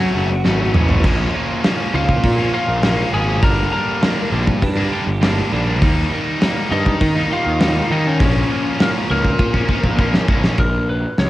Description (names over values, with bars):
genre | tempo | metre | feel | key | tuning
quiet-loud alternative rock | 101 BPM | 4/4 | straight | Bb dorian | A4 = 441 Hz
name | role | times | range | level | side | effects
lightly driven lead guitar | melody | 0.0-11.3 s | Bb3 to Bb5 | -23 LUFS | left 2 dB | none
twelve-string electric guitar | arpeggios | 0.0-10.6 s | Gb2 to G4 | -29 LUFS | right 5 dB | none
scooped high-gain guitar | riff | 0.0-10.6 s | Gb2 to Eb4 | -23 LUFS | left 5 dB | distortion
tight distorted guitar | riff | 0.0-10.6 s | Gb2 to Eb4 | -26 LUFS | right 7 dB | distortion
fuzz picked electric bass | bass | 0.0-11.3 s | Gb1 to Eb3 | -20 LUFS | equal | overdrive
big rock drum kit | drums | 0.4-11.3 s | crash cymbal, hi-hat, kick drum, snare drum, toms | -19 LUFS | equal | cassette tape
room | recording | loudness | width
little or no reverb | home recording on cassette | -15 LUFS | side -15 dB against mid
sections
0.0-10.6 A section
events
drum fill 0.4-1.0, 9.4-10.6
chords
0.0 Gbm; 1.0 Bbm; 3.4 Gm; 5.8 Eb; 8.2 Bbm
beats
0.45 | 1.05 1.64 2.24 2.84 | 3.43 4.03 4.63 5.22 | 5.82 6.41 7.01 7.61 | 8.20 8.80 9.39 9.99 | 10.59 11.19